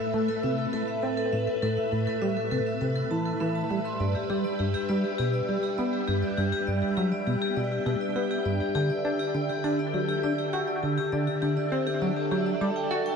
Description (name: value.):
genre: ambient, sequencer-driven space music.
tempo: 101 BPM.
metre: 4/4.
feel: straight.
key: unclear.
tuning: A4 = 444 Hz.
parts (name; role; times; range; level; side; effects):
phased string machine; sustained chords; 0.0-13.2 s; A2 to G5; -31 LUFS; equal; ensemble chorus, phaser.
vibraphone with hard mallets; arpeggios; 0.0-13.2 s; G4 to C6; -30 LUFS; moving between left 5 dB and right 1 dB; auto-pan, tape echo.
bubbling stepped-filter texture; texture; 0.0-13.2 s; E5; -39 LUFS; left 2 dB; chorus, built-in reverb.
plucky analog bass; riff; 0.1-13.1 s; G2 to F#4; -29 LUFS; equal; lush chorus, tape echo.
room: moderate plate reverb, RT60 3.1 s.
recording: dark, warm production.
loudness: -25 LUFS.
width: side -6 dB against mid.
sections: 0.0-13.2 A section.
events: fade-in on synth texture 0.0-13.2; filter sweep on analog synth bass 0.0-13.2.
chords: 0.0 Am; 4.0 G; 8.8 Dsus4.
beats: 0.44 1.03 | 1.62 2.22 2.81 3.41 | 4.00 4.59 5.19 5.78 | 6.38 6.97 7.57 8.16 | 8.75 9.35 9.94 10.54 | 11.13 11.72 12.32 12.91.